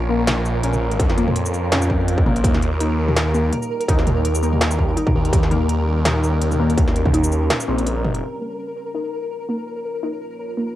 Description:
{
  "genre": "half-time drum and bass",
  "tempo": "166 BPM",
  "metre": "4/4",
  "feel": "swing 55% on 16ths, half-time",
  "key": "Bb dorian",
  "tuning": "A4 = 441 Hz",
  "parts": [
    { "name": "deep dark ambient pad", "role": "sustained chords", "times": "0.0-10.8 s", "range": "G3 to Db5", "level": "-31 LUFS", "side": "equal", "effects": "chorus, built-in reverb, vintage 12-bit sampler grit, sidechain pumping, cassette tape" },
    { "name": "phased detuned saw bass", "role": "bass", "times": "0.0-8.2 s", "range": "Bb1 to F2", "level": "-20 LUFS", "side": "equal", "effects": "phaser" },
    { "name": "pulsing gated texture", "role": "texture", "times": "0.0-10.8 s", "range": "Bb4", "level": "-28 LUFS", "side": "right 1 dB", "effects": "chorus, built-in reverb, cassette tape" },
    { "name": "warbly dusty pluck", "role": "arpeggios", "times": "0.1-10.7 s", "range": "Bb3 to Eb4", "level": "-25 LUFS", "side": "left 3 dB", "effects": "chorus, cassette tape, analog delay" },
    { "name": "industrial drum kit", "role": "drums", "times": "0.3-8.2 s", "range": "hi-hat, shaker, snare drum, toms", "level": "-24 LUFS", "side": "equal", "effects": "cassette tape" },
    { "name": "electronic kick drum", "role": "drums", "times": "1.0-7.1 s", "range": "none", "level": "-19 LUFS", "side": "equal", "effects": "distortion, cassette tape" }
  ],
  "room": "light reverb",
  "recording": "home recording on cassette",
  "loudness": "-17 LUFS",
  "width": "side -14 dB against mid",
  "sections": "0.0-8.2 A section; 8.2-10.8 B section",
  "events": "drop 0.0-8.2; break 7.5-8.2; filter sweep on synth pluck 8.2-10.8",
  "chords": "0.0 Bbm; 2.4 Eb; 8.2 Bbm"
}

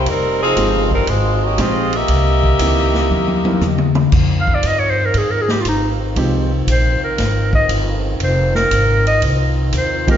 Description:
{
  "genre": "jazz, big band swing",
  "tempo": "118 BPM",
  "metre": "4/4",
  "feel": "swing 68% on 8ths",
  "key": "F minor",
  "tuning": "A4 = 440 Hz",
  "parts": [
    { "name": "clear saxophone section", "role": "melody", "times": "0.0-4.0 s", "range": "F3 to E5", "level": "-17 LUFS", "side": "left 1 dB", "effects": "none" },
    { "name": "upright bass", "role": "bass", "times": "0.0-10.2 s", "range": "F1 to Ab2", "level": "-18 LUFS", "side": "equal", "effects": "none" },
    { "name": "swinging big-band drum kit", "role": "drums", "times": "0.1-10.2 s", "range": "crash cymbal, hi-hat, kick drum, ride cymbal, snare drum, toms", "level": "-20 LUFS", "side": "left 1 dB", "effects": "none" },
    { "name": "warm baby grand piano", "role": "accompaniment", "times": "0.6-6.5, 10.1-10.2 s", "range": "D#3 to Bb4", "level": "-23 LUFS", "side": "right 3 dB", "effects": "none" },
    { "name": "bright trombone section", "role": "sustained chords", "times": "4.1-10.2 s", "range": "Eb3 to F4", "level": "-26 LUFS", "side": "right 1 dB", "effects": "none" },
    { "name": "breathy clarinet", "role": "melody", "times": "4.4-10.2 s", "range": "Eb4 to F5", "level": "-18 LUFS", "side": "equal", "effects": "none" }
  ],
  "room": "moderate concert hall reverb, RT60 2.2 s",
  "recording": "recorded in a church or concert hall, nothing above 7.5 kHz",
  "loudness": "-13 LUFS",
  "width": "side -9 dB against mid",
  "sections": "0.0-4.1 A section; 4.1-10.2 B section",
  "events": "drum fill 3.1-4.1; clarinet solo 4.1-10.2",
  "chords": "0.1 Fm7; 2.1 C7#9; 4.1 Fm7"
}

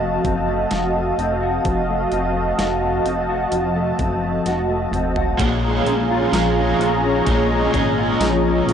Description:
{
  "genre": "dream pop",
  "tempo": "64 BPM",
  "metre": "4/4",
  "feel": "straight",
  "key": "Bb minor from 5.4 s",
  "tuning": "A4 = 440 Hz",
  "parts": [
    { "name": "warm analog pad", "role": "sustained chords", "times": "0.0-8.7 s", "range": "Gb4 to Bb5", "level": "-20 LUFS", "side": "right 2 dB", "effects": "chorus, shimmer reverb" },
    { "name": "mellow electric guitar", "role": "arpeggios", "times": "0.0-8.7 s", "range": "F2 to Gb4", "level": "-22 LUFS", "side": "left 4 dB", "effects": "ensemble chorus, analog delay, shimmer reverb" },
    { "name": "chorused synth bass", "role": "bass", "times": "0.0-8.7 s", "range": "F1 to Bb1", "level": "-26 LUFS", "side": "equal", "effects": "tube saturation" },
    { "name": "clean 12-bit digital drum machine", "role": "drums", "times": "0.2-8.7 s", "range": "hi-hat, kick drum, snare drum, tambourine, toms", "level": "-25 LUFS", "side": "right 1 dB", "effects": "none" },
    { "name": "overdriven electric guitar", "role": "accompaniment", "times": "5.4-8.7 s", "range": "Bb2 to Ab4", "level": "-24 LUFS", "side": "right 3 dB", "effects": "tremolo, analog chorus, shimmer reverb" }
  ],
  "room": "moderate lush hall reverb, RT60 2.6 s",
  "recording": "dry, gritty hardware recording, nothing above 10.9 kHz",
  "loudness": "-17 LUFS",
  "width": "side -8 dB against mid",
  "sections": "0.0-5.4 A section; 5.4-8.7 B section",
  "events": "drum fill 4.5-5.4",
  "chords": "0.0 F7b9; 5.4 Bbm7"
}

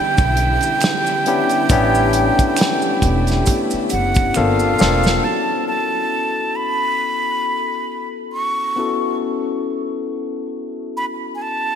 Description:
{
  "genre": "R&B, neo-soul",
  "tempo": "68 BPM",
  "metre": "4/4",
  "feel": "swing 56% on 16ths",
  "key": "unclear",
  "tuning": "A4 = 440 Hz",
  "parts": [
    { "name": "breathy concert flute", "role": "melody", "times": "0.0-11.8 s", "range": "F5 to C#6", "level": "-20 LUFS", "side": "right 2 dB", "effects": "ping-pong delay" },
    { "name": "barky tine electric piano", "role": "accompaniment", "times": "0.0-11.8 s", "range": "Bb3 to A4", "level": "-21 LUFS", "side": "left 4 dB", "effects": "overdrive" },
    { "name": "warm studio string section", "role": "sustained chords", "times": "0.0-5.2 s", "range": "D3 to F4", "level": "-28 LUFS", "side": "equal", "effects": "none" },
    { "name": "upright bass", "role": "bass", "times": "0.2-5.2 s", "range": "E1 to B1", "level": "-20 LUFS", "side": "equal", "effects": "none" },
    { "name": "warm soul drum kit", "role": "drums", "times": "0.2-5.2 s", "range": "hi-hat, kick drum, snare drum", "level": "-20 LUFS", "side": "right 1 dB", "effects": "gated reverb" },
    { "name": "maracas and finger snaps", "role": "percussion", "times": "0.2-5.2 s", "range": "none", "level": "-31 LUFS", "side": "right 4 dB", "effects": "none" }
  ],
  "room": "moderate lush hall reverb, RT60 2.8 s",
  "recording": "bright 1980s-style digital production",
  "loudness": "-16 LUFS",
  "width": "side -8 dB against mid",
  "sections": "0.0-5.2 A section; 5.2-11.8 B section",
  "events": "drum fill 4.3-5.2",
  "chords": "0.0 Em7; 1.7 A7sus4; 4.3 Gm7; 5.2 F#m7"
}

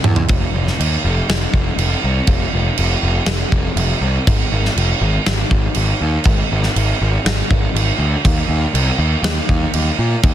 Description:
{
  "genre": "quiet-loud alternative rock",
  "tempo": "121 BPM",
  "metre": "4/4",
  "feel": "straight",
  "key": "F dorian",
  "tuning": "A4 = 440 Hz",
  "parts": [
    { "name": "big rock drum kit", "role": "drums", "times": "0.0-10.3 s", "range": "crash cymbal, kick drum, snare drum, toms", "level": "-17 LUFS", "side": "right 1 dB", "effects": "none" },
    { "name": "fuzz picked electric bass", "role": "bass", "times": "0.1-10.3 s", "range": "F1 to Bb2", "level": "-17 LUFS", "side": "equal", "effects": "overdrive" }
  ],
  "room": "little or no reverb",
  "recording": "dense, heavily limited modern master",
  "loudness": "-14 LUFS",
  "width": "side -11 dB against mid",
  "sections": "0.3-10.3 A section",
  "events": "drum fill 0.0-0.3",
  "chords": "none"
}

